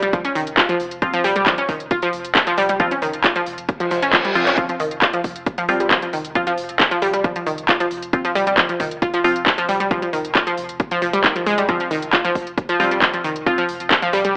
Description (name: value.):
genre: driving peak-time techno.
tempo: 135 BPM.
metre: 4/4.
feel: straight.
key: unclear.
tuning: A4 = 441 Hz.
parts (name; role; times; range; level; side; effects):
analog pluck; riff; 0.0-14.3 s; Eb3 to F4; -19 LUFS; equal; chorus, sidechain pumping, tape echo.
saturated sub bass; bass; 0.0-14.4 s; F1; -45 LUFS; equal; tube saturation, sidechain pumping, low-pass filter.
techno drum kit; drums; 0.0-14.3 s; handclaps, hi-hat; -18 LUFS; equal; overdrive, sidechain pumping on hats, small room ambience.
electronic kick drum; drums; 0.1-14.0 s; none; -22 LUFS; equal; overdrive, small room ambience.
wavetable chord stab; stabs; 1.0-13.6 s; F3 to F4; -22 LUFS; equal; sidechain pumping, dub echo.
reverse cymbal; sound effects; 3.8-4.6 s; none; -23 LUFS; equal; none.
room: moderate stone room reverb, RT60 1.0 s.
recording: AM radio sound.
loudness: -16 LUFS.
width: side -30 dB against mid.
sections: 0.0-14.4 A section.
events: reverse cymbal 3.8-4.6.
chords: 0.0 F5.